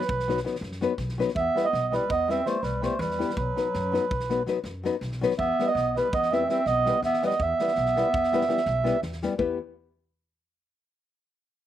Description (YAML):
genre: balkan folk, Balkan wedding band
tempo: 328 BPM (eighths)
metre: 11/8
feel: straight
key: E harmonic minor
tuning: A4 = 440 Hz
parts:
  - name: mellow accordion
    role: melody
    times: 0.0-9.0 s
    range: B4 to E5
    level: -25 LUFS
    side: right 5 dB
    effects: none
  - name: dark clarinet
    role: second line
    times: 0.0-9.0 s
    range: F#3 to C4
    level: -32 LUFS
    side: left 5 dB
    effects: slapback echo
  - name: nylon-string guitar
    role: accompaniment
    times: 0.0-9.6 s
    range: F#3 to B4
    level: -28 LUFS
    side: left 6 dB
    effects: slapback echo
  - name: loose indie drum kit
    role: percussion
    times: 0.0-9.6 s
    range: kick drum, snare drum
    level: -38 LUFS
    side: equal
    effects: none
  - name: upright bass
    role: bass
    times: 0.1-9.6 s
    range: B1 to F#2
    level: -33 LUFS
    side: equal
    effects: none
room: little or no reverb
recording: recorded outdoors, with no room sound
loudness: -23 LUFS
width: side -11 dB against mid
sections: 0.0-9.4 A section; 9.4-11.4 B section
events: none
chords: 0.0 B; 1.4 Em; 3.4 B; 5.4 Em